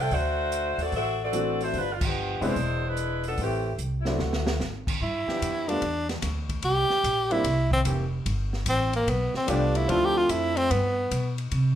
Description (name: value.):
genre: jazz, big band swing.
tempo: 147 BPM.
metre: 4/4.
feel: swing 66% on 8ths.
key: G mixolydian.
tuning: A4 = 442 Hz.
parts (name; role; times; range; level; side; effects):
warm saxophone section; melody; 0.0-4.6 s; E3 to G5; -28 LUFS; left 1 dB; none.
upright bass; bass; 0.0-11.8 s; E1 to C3; -29 LUFS; equal; none.
open jazz drum kit; drums; 0.1-11.6 s; crash cymbal, hi-hat, kick drum, ride cymbal, snare drum; -33 LUFS; equal; none.
warm concert grand piano; accompaniment; 1.3-10.7 s; E3 to F#4; -29 LUFS; left 1 dB; none.
breathy tenor saxophone; melody; 5.0-11.4 s; Bb3 to G4; -25 LUFS; equal; none.
clear trombone section; sustained chords; 5.3-10.7 s; E3 to A4; -35 LUFS; left 2 dB; none.
room: moderate large studio reverb, RT60 0.9 s.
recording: minimal, uncompressed stereo recording.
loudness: -24 LUFS.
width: side -10 dB against mid.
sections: 0.0-5.0 A section; 5.0-11.8 B section.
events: band accent 1.9; drum fill 4.2-4.6; tenor saxophone solo 5.0-11.8.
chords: 0.1 D7; 1.7 G7; 2.6 E7; 3.4 Am7; 4.2 D9; 5.0 G7; 6.6 C7; 8.3 G7; 9.9 Dm7; 10.7 G.